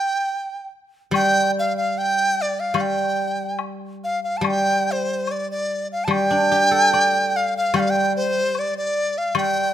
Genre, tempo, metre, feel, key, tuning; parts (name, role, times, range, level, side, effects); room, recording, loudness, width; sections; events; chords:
chinese traditional, Chinese chamber ensemble; 74 BPM; 2/4; rubato; G shang mode; A4 = 440 Hz
dizi; melody; 0.0-9.7 s; C5 to A5; -20 LUFS; right 1 dB
guzheng; accompaniment; 1.1-9.7 s; G3 to D5; -24 LUFS; equal
woodblock; percussion; 1.1-9.5 s; -28 LUFS; left 9 dB
light reverb; close, detailed microphones; -18 LUFS; side -11 dB against mid
0.0-4.4 A section; 4.4-9.7 B section